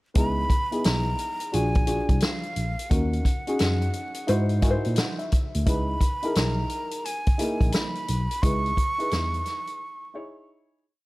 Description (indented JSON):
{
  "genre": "hip hop, jazz-hop",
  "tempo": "87 BPM",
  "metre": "4/4",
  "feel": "swing 64% on 16ths",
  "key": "C# dorian",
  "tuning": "A4 = 437 Hz",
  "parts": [
    { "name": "dark upright piano", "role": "accompaniment", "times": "0.1-10.8 s", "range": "A#3 to G#5", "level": "-30 LUFS", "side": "left 1 dB", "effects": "none" },
    { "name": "breathy hollow jazz flute", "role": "melody", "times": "0.2-10.5 s", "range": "E#5 to C#6", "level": "-31 LUFS", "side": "right 1 dB", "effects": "none" },
    { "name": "tine electric piano", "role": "bass", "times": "0.2-9.4 s", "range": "A#1 to A#2", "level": "-26 LUFS", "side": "equal", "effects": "medium stereo tremolo" },
    { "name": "vintage drum kit", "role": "drums", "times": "0.2-9.8 s", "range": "hi-hat, kick drum, snare drum", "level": "-25 LUFS", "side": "equal", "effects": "none" }
  ],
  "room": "small room ambience",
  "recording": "vinyl crackle",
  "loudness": "-22 LUFS",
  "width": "side -20 dB against mid",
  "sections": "0.2-11.1 A section",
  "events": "upright piano fill 4.3-5.7; fade-out 8.4-11.1; break 9.8-11.1",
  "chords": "0.2 C#m9; 1.5 A#7b13; 2.9 D#m7; 4.3 G#7b13; 5.7 C#m9"
}